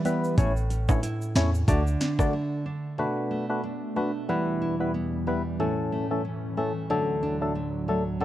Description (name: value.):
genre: dancehall.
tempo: 92 BPM.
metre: 4/4.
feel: swing 56% on 16ths.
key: unclear.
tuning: A4 = 440 Hz.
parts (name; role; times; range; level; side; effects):
nylon-string guitar; arpeggios; 0.0-8.2 s; A2 to E4; -30 LUFS; right 2 dB; none.
percussive organ stab; accompaniment; 0.1-8.2 s; E3 to D5; -28 LUFS; left 2 dB; chorus.
island pop drum kit; drums; 0.1-2.3 s; hi-hat, kick drum, rim click, snare drum; -24 LUFS; equal; overdrive.
egg shaker and timbales; percussion; 0.1-2.3 s; none; -38 LUFS; right 5 dB; none.
warm 808-style bass; bass; 0.4-2.0 s; A1 to E2; -26 LUFS; equal; none.
airy breathy pad; sustained chords; 3.0-8.2 s; D2 to D4; -33 LUFS; equal; chorus, sidechain pumping.
room: light reverb, digital ambience.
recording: worn, warbling old tape, cassette tape, warbly pitch drift.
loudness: -24 LUFS.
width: side -13 dB against mid.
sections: 0.0-3.0 A section; 3.0-8.2 B section.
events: break 2.3-3.0.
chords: 0.4 A; 1.7 D; 3.0 Bm7; 4.3 Em; 5.6 A; 6.9 D.